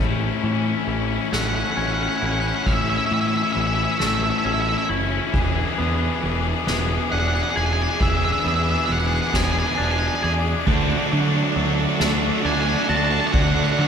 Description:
post-rock; 45 BPM (dotted quarters); 6/8; straight; A major; A4 = 438 Hz
bright studio string section; sustained chords; 0.0-13.9 s; G#4 to D6; -34 LUFS; equal
clean electric guitar; arpeggios; 0.0-13.9 s; A2 to G#4; -26 LUFS; left 2 dB; spring reverb
distorted electric guitar; riff; 0.0-13.9 s; C#4 to G#4; -25 LUFS; left 6 dB; distortion
growling fingered electric bass; bass; 0.0-13.9 s; E1 to D3; -25 LUFS; right 1 dB; overdrive
soft-mallet drum kit; drums; 0.4-13.9 s; crash cymbal, kick drum, ride cymbal, snare drum; -27 LUFS; right 1 dB
octave-fuzz lead guitar; melody; 1.3-13.9 s; E5 to A5; -25 LUFS; right 3 dB; distortion
sludgy distorted guitar; riff; 10.7-13.9 s; A3 to D4; -24 LUFS; right 10 dB; overdrive
moderate concert hall reverb, RT60 2.1 s; recorded in a church or concert hall; -19 LUFS; side -7 dB against mid
0.0-13.9 A section
build-up 0.0-13.9
0.0 A; 5.3 E7; 10.7 D
1.33 | 2.67 4.00 | 5.34 6.68 | 8.01 9.35 | 10.68 12.01 | 13.34

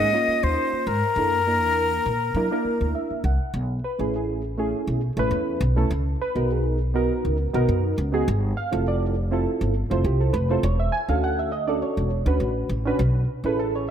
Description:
jazz; 102 BPM; 4/4; straight; B dorian from 3.5 s; A4 = 443 Hz
breathy bright jazz flute; melody; 0.0-2.9 s; Bb4 to Eb5; -22 LUFS; left 3 dB
reed electric piano; accompaniment; 0.0-13.9 s; A3 to G#5; -25 LUFS; right 2 dB; analog chorus
upright bass; bass; 0.0-13.9 s; E1 to Gb3; -24 LUFS; equal
moderate lush hall reverb, RT60 2.2 s; bright 1980s-style digital production; -21 LUFS; side -9 dB against mid
0.0-3.5 A section; 3.5-13.9 B section
reed electric piano fill 2.7-3.5
0.0 Absus4; 1.2 Gb7b13; 3.5 B13sus4; 5.9 C#13sus4; 8.3 G13sus4; 10.6 E13sus4; 13.0 B13sus4
0.58 | 1.17 1.77 2.36 2.95 | 3.54 4.13 4.72 5.32 | 5.91 6.50 7.09 7.68 | 8.27 8.86 9.45 10.04 | 10.63 11.22 11.82 12.41 | 13.00 13.59

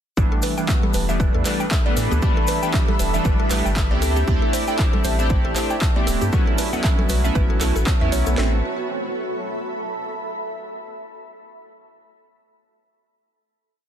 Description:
deep house; 117 BPM; 4/4; swing 57% on 16ths; A4 = 440 Hz
hollow soft pad; sustained chords; 0.4-8.6 s; C#4 to A5; -32 LUFS; left 1 dB; chorus, sidechain pumping
mallet-like synth pluck; arpeggios; 0.2-8.6 s; F#4 to G5; -30 LUFS; right 2 dB; chorus, sidechain pumping, digital delay
chorused polysynth; stabs; 0.2-8.6 s; E3 to G4; -25 LUFS; right 1 dB; digital delay
warm sub bass; bass; 0.2-8.6 s; D1 to A2; -22 LUFS; equal; sidechain pumping
house drum kit; drums; 0.2-8.5 s; handclaps, kick drum, snare drum; -21 LUFS; equal; overdrive
cabasa; percussion; 0.2-8.4 s; -34 LUFS; left 5 dB
granular cloud pad; texture; 1.6-10.4 s; B3 to B5; -29 LUFS; equal; built-in reverb, sidechain pumping
punchy analog drum machine; drums; 0.4-8.2 s; handclaps, hi-hat; -29 LUFS; right 1 dB; overdrive
congas; percussion; 0.8-8.4 s; -33 LUFS; right 2 dB
digital ambience; dense, heavily limited modern master; -18 LUFS; side -9 dB against mid
0.2-8.4 drop; 8.4-10.4 final chord
drop 0.2-8.4
0.2 A9sus4; 4.0 D9sus4; 6.3 B9sus4; 8.4 Am
| 0.17 0.69 1.20 1.71 | 2.23 2.74 3.25 3.76 | 4.28 4.79 5.30 5.82 | 6.33 6.84 7.35 7.87 | 8.38 8.89 9.40 9.92

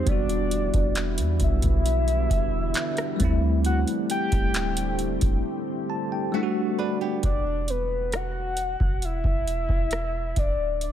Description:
contemporary R&B; 67 BPM; 4/4; straight; E minor; A4 = 440 Hz
soft octave-layered synth lead; melody; 0.0-10.9 s; B4 to G5; -29 LUFS; left 1 dB; chorus, phaser, ping-pong delay
bell-like tine electric piano; accompaniment; 0.0-7.3 s; F#3 to A5; -28 LUFS; left 1 dB; fast stereo tremolo
deep dark ambient pad; sustained chords; 0.0-7.2 s; D3 to G4; -33 LUFS; equal; chorus, built-in reverb, tremolo
clean 808-style bass; bass; 0.0-10.9 s; D1 to E2; -26 LUFS; equal
booming analog drum machine; drums; 0.1-10.9 s; handclaps, hi-hat, kick drum, rim click; -26 LUFS; equal
flamenco guitar; arpeggios; 6.3-7.4 s; A3 to B4; -34 LUFS; right 8 dB
digital ambience; -22 LUFS; side -10 dB against mid
0.0-7.2 A section; 7.2-10.9 B section
break 5.4-7.2; tine electric piano fill 5.4-7.2
0.1 Em7; 3.2 D7sus4; 6.3 Em11; 7.2 E7sus2; 10.4 N.C.
| 0.07 0.96 1.86 2.75 | 3.65 4.54 5.44 6.33 | 7.23 8.13 9.02 9.92 | 10.81

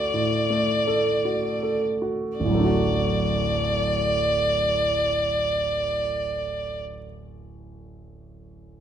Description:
classical, romantic duo for violin and grand piano; 53 BPM; 4/4; rubato; D major; A4 = 441 Hz
rich violin; melody; 0.0-6.8 s; D5; -24 LUFS; equal
warm concert grand piano; accompaniment; 0.0-8.8 s; D1 to A4; -25 LUFS; right 1 dB
wet recital hall reverb, RT60 1.4 s; -21 LUFS; side -9 dB against mid
0.0-2.4 A section; 2.4-7.0 B section
slowing down 0.0-2.4
0.0 D
0.13 1.24 | 2.40 3.52 4.65 5.79

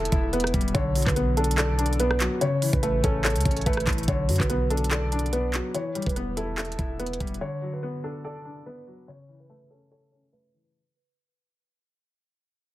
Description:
hip hop, trap; 144 BPM; 4/4; half-time; B minor; A4 = 440 Hz
dark concert grand piano; melody; 0.0-10.5 s; A4 to C#5; -30 LUFS; right 1 dB; low-pass filter, ping-pong delay
felt-muted upright piano; accompaniment; 0.0-10.8 s; C#3 to E5; -29 LUFS; left 2 dB; low-pass filter
warm 808-style bass; bass; 0.0-7.4 s; E1 to F#2; -27 LUFS; equal
trap drum kit; drums; 0.1-7.4 s; handclaps, hi-hat, kick drum, rim click; -27 LUFS; equal
small room ambience; heavily compressed radio sound; -23 LUFS; side -15 dB against mid
0.0-4.1 A section; 4.1-10.7 B section
fade-out 4.1-10.7; filter sweep 4.1-10.7
0.0 Em; 0.7 Bm; 2.4 A; 4.1 Bm; 5.7 Em; 7.4 Bm; 9.1 A
0.33 | 0.75 1.16 1.58 2.00 | 2.41 2.83 3.25 3.66 | 4.08 4.50 4.91 5.33 | 5.75 6.16 6.58 7.00 | 7.41 7.83 8.25 8.66 | 9.08 9.50 9.91 10.33

